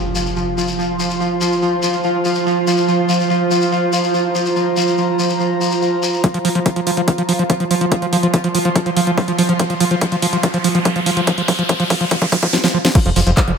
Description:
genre	psychedelic trance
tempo	143 BPM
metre	4/4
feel	straight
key	unclear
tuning	A4 = 441 Hz
part	pulsing gated texture	sustained chords	0.0-13.6 s	F3 to F4	-19 LUFS	right 1 dB	chorus, built-in reverb, sidechain pumping
part	impact and riser	sound effects	0.0-1.2, 8.5-12.5 s	none	-26 LUFS	equal	none
part	airy breathy pad	texture	0.2-12.5 s	F4 to C6	-22 LUFS	right 2 dB	chorus, sidechain pumping
part	shekere	percussion	0.2-6.2, 13.0-13.5 s	none	-25 LUFS	left 6 dB	none
part	screaming distorted acid line	riff	6.2-13.5 s	F3	-18 LUFS	equal	distortion, chorus, auto-pan, sidechain pumping, digital delay
part	electronic kick drum	drums	6.2-13.5 s	none	-16 LUFS	equal	high-pass filter on kick
part	techno drum kit	drums	6.2-13.6 s	crash cymbal, handclaps, hi-hat, snare drum	-22 LUFS	right 1 dB	none
part	fat analog bass	bass	13.1-13.5 s	F1	-17 LUFS	equal	none
room	light reverb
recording	none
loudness	-14 LUFS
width	side -6 dB against mid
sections	0.0-6.2 A section; 6.2-13.0 B section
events	impact 0.0-1.2; build-up 6.2-13.0; riser 8.5-12.5; drum fill 9.6-12.5, 12.5-13.0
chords	0.0 F5

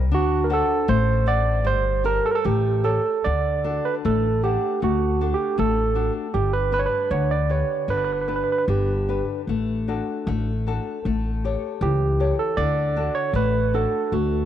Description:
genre	fado-style ballad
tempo	77 BPM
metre	2/4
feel	rubato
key	D major from 3.2 s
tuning	A4 = 441 Hz
part	nylon-string guitar	accompaniment	0.0-14.5 s	D3 to F#5	-27 LUFS	left 8 dB	cassette tape
part	upright bass	bass	0.0-14.5 s	G1 to D2	-24 LUFS	left 1 dB	none
part	barky tine electric piano	melody	0.1-9.2, 11.8-14.5 s	F#4 to D5	-23 LUFS	right 6 dB	overdrive, medium stereo tremolo, cassette tape
room	light reverb, small room reverb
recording	home recording on cassette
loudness	-20 LUFS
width	side -10 dB against mid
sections	0.0-3.2 A section; 3.2-14.5 B section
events	none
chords	0.1 D7; 1.6 Gmadd9; 2.4 A7; 3.2 D; 6.3 G; 9.5 D/A; 11.0 A7; 12.6 D

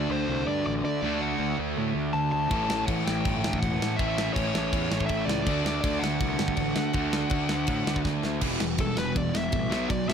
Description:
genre	punk rock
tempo	162 BPM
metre	4/4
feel	straight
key	unclear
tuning	A4 = 440 Hz
part	dark smooth lead guitar	melody	0.0-10.1 s	A4 to A5	-31 LUFS	left 1 dB	overdrive
part	distorted electric guitar	riff	0.0-10.1 s	A2 to A4	-32 LUFS	left 14 dB	distortion
part	sludgy distorted guitar	riff	0.0-10.1 s	E2 to D4	-31 LUFS	right 10 dB	overdrive
part	fuzz picked electric bass	bass	0.0-10.1 s	E1 to D3	-32 LUFS	equal	overdrive
part	fuzz guitar	riff	2.5-10.1 s	E2 to D4	-36 LUFS	equal	distortion
part	tight metal drum kit	drums	2.5-10.1 s	crash cymbal, kick drum, ride cymbal, snare drum	-30 LUFS	equal	none
room	light reverb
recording	none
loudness	-24 LUFS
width	side -7 dB against mid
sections	0.0-8.4 A section; 8.4-10.1 B section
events	drum fill 8.1-8.4; lead electric guitar solo 8.4-10.1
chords	0.0 D; 2.5 A; 5.5 D; 8.4 Em

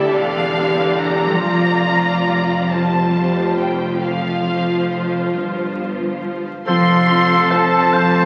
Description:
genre	cinematic, emotional film score for orchestra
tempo	44-48 BPM (dotted quarters)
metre	6/8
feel	rubato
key	unclear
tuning	A4 = 440 Hz
part	rich studio violin section	melody	0.0-8.3 s	E5 to C6	-24 LUFS	equal	none
part	warm symphonic violin section	second line	0.0-8.3 s	F4 to C6	-27 LUFS	equal	none
part	rich symphonic viola section	accompaniment	0.0-8.0 s	D3 to G4	-24 LUFS	equal	none
part	concert harp	arpeggios	0.0-8.3 s	F3 to A5	-25 LUFS	equal	none
part	rich symphonic cello section	bass	0.0-8.3 s	E2 to G2	-25 LUFS	equal	none
part	rich symphonic double bass section	bass	0.0-8.3 s	E1 to G1	-30 LUFS	equal	none
part	mellow clarinet	second line	6.7-8.3 s	A4 to C5	-26 LUFS	equal	none
part	silver concert flute	second line	6.7-8.3 s	C5 to F5	-23 LUFS	equal	none
part	warm oboe	second line	6.7-8.3 s	A4 to C5	-21 LUFS	equal	none
part	mellow French horn section	sustained chords	6.7-8.3 s	C4 to F4	-27 LUFS	equal	none
room	wet scoring stage reverb, RT60 1.7 s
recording	very old 78 rpm record, vinyl crackle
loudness	-17 LUFS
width	mono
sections	0.0-6.7 A section; 6.7-8.3 B section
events	none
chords	0.0 Dm; 1.4 Fsus2; 6.7 F

